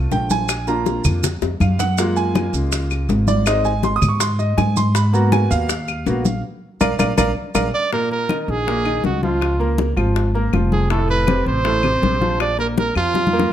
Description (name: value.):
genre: latin, salsa.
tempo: 161 BPM.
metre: 4/4.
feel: straight.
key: Eb minor.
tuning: A4 = 439 Hz.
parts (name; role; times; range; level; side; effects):
bright upright piano; accompaniment; 0.0-13.5 s; A2 to Eb6; -22 LUFS; right 1 dB; none.
upright bass; bass; 0.0-13.5 s; F1 to Ab2; -20 LUFS; equal; none.
bongos; percussion; 0.1-13.5 s; none; -27 LUFS; left 9 dB; none.
congas; percussion; 0.1-13.5 s; none; -24 LUFS; left 3 dB; none.
maracas; percussion; 0.1-7.6 s; none; -28 LUFS; right 11 dB; none.
claves; percussion; 0.5-13.1 s; none; -29 LUFS; left 10 dB; none.
clear trumpet; melody; 7.7-13.5 s; F4 to D5; -20 LUFS; right 3 dB; slapback echo.
room: moderate large studio reverb, RT60 1.3 s.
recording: close, detailed microphones.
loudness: -16 LUFS.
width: side -10 dB against mid.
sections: 0.0-7.9 A section; 7.9-13.5 B section.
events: upright piano solo 0.0-7.9; drum fill 1.2-2.0, 6.8-7.9, 13.1-13.5; band accent 6.4-7.9.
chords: 0.5 Bb; 2.0 Gbmaj7; 3.5 Ab; 5.0 Abm7; 6.4 Bb; 7.9 Eb5; 9.4 Db6; 10.9 F; 12.4 Bb5.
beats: 0.12 | 0.49 0.86 1.24 1.61 | 1.98 2.35 2.72 3.09 | 3.47 3.84 4.21 4.58 | 4.95 5.32 5.69 6.07 | 6.44 6.81 7.18 7.55 | 7.92 8.30 8.67 9.04 | 9.41 9.79 10.16 10.53 | 10.91 11.28 11.65 12.03 | 12.40 12.77 13.14 13.52.